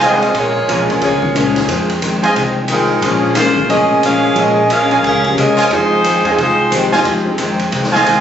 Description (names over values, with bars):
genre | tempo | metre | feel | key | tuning
jazz, big band swing | 179 BPM | 4/4 | swing 62% on 8ths | F minor | A4 = 441 Hz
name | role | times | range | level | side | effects
warm saxophone section | melody | 0.0-7.4 s | F3 to F5 | -14 LUFS | equal | none
picked steel-string acoustic guitar | accompaniment | 0.0-8.2 s | F2 to Db4 | -20 LUFS | left 4 dB | none
warm trumpet section | stabs | 0.0-2.3, 4.9-8.2 s | F4 to Ab5 | -17 LUFS | right 3 dB | none
upright bass | bass | 0.0-8.2 s | F1 to C3 | -23 LUFS | equal | none
swinging big-band drum kit | drums | 0.0-8.2 s | hi-hat, kick drum, ride cymbal, snare drum | -21 LUFS | right 2 dB | none
warm concert grand piano | accompaniment | 0.7-7.4 s | F3 to Bb4 | -22 LUFS | right 4 dB | none
room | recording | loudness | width
moderate recital hall reverb, RT60 1.5 s | recorded on a phone in the room, studio reverb, compression, nothing above 7.9 kHz | -11 LUFS | side -9 dB against mid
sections
0.0-8.2 A section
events
none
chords
0.3 Bbm7; 1.7 Fm7; 3.0 Bbm7; 5.7 Fm7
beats
0.02 | 0.35 0.69 1.02 1.35 | 1.69 2.02 2.36 2.69 | 3.03 3.36 3.69 4.03 | 4.37 4.70 5.04 5.37 | 5.71 6.04 6.38 6.71 | 7.05 7.38 7.72 8.05